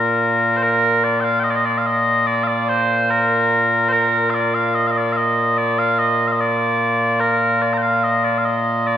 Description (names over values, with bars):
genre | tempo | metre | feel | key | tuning
scottish traditional, Scottish pipe music | 73 BPM | 2/4 | straight | Bb major | A4 = 437 Hz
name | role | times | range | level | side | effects
mellow small bagpipes | solo | 0.0-9.0 s | Bb2 to Bb5 | -15 LUFS | equal | none
room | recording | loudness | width
wet recital hall reverb, RT60 1.6 s | recorded in a church or concert hall | -15 LUFS | side -10 dB against mid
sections
0.6-9.0 A section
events
none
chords
none